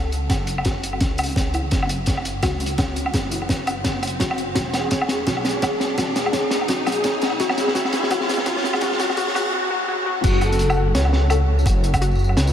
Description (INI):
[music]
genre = half-time drum and bass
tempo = 169 BPM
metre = 4/4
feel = swing 57% on 16ths, half-time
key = F# minor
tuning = A4 = 440 Hz
[part]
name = warbly dusty pluck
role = arpeggios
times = 0.0-12.5 s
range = C#4 to F#5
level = -27 LUFS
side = left 2 dB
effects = chorus, cassette tape, diffuse ambient delay
[part]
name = dark detuned saw bass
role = bass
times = 0.0-12.5 s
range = E1 to C#2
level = -23 LUFS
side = equal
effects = tube saturation
[part]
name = riser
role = sound effects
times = 1.5-9.5 s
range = none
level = -30 LUFS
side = equal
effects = none
[part]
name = crunchy breakbeat drum kit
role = drums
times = 0.1-12.5 s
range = crash cymbal, hi-hat, snare drum, tambourine, woodblock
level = -23 LUFS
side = equal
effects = none
[part]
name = electronic kick drum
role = drums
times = 0.3-12.0 s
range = none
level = -23 LUFS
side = equal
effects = overdrive
[part]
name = breathy flute-like synth lead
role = melody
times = 4.7-10.9 s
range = G#4 to A4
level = -28 LUFS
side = left 1 dB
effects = ensemble chorus, vintage 12-bit sampler grit, ping-pong delay
[sound]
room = moderate huge ambient reverb, RT60 6.8 s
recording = dreamy mix soaked in reverb, high-pass filter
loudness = -18 LUFS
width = side -9 dB against mid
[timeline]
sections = 0.0-10.2 A section; 10.2-12.5 B section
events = build-up 0.0-10.2; drum fill 0.0-9.5; filter sweep on synth pluck 0.0-10.2; filter sweep 0.0-10.2; riser 1.5-9.5; drop 10.2-12.5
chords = 0.0 F#5; 4.6 E; 10.2 F#m